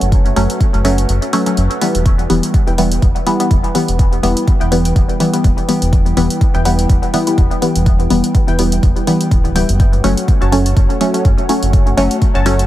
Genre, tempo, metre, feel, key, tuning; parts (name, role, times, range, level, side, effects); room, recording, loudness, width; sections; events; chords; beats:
dub techno; 124 BPM; 4/4; swing 55% on 16ths; E dorian; A4 = 440 Hz
dark analog pad; sustained chords; 0.0-12.7 s; G3 to G5; -25 LUFS; right 1 dB; chorus, sidechain pumping
filtered dub chord stab; stabs; 0.0-12.7 s; E3 to C#4; -16 LUFS; left 1 dB; chorus, phaser, cassette tape, sidechain pumping, dub echo
round analog bass; bass; 0.0-12.7 s; D1 to F#1; -16 LUFS; equal; sidechain pumping
electronic hi-hat; drums; 0.0-12.7 s; -25 LUFS; right 1 dB
electronic kick drum; drums; 0.1-12.3 s; -13 LUFS; equal; overdrive
filtered dub chord stab; riff; 2.7-12.5 s; E4 to A5; -28 LUFS; left 3 dB; chorus, sidechain pumping, dub echo
little or no reverb; -11 LUFS; side -14 dB against mid
0.0-12.7 A section
kick drops out 1.1-2.1
0.0 F#m; 2.1 Em; 9.8 F#m
| 0.12 0.60 1.09 1.57 | 2.06 2.54 3.02 3.51 | 3.99 4.48 4.96 5.44 | 5.93 6.41 6.89 7.38 | 7.86 8.35 8.83 9.31 | 9.80 10.28 10.77 11.25 | 11.73 12.22